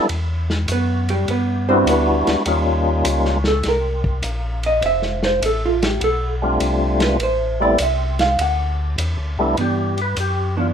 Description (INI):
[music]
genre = soul jazz organ trio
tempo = 101 BPM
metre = 4/4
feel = swing 68% on 8ths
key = G major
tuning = A4 = 439 Hz
[part]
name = percussive tonewheel organ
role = melody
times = 0.0-10.7 s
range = G3 to B4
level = -18 LUFS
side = left 2 dB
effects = slow rotary speaker, overdrive
[part]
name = tonewheel organ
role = bass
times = 0.1-10.7 s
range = F1 to G2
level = -22 LUFS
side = left 1 dB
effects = chorus vibrato, stopped rotary speaker
[part]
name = vintage drum kit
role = drums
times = 0.1-10.4 s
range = hi-hat, kick drum, ride cymbal, snare drum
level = -26 LUFS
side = left 1 dB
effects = none
[part]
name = vintage hollow-body jazz guitar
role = accompaniment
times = 0.7-10.7 s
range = E3 to F#5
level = -20 LUFS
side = right 3 dB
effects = none
[sound]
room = light reverb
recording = minimal, uncompressed stereo recording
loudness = -17 LUFS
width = side -8 dB against mid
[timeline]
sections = 0.0-9.6 A section; 9.6-10.7 B section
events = hollow-body jazz guitar solo 0.0-9.6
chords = 0.1 Em7; 2.5 Eb9; 4.8 F6; 7.2 Am7; 8.4 D9; 9.6 G6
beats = | 0.09 0.68 1.27 1.86 | 2.46 3.05 3.64 4.24 | 4.83 5.42 6.02 6.61 | 7.20 7.80 8.39 8.98 | 9.57 10.17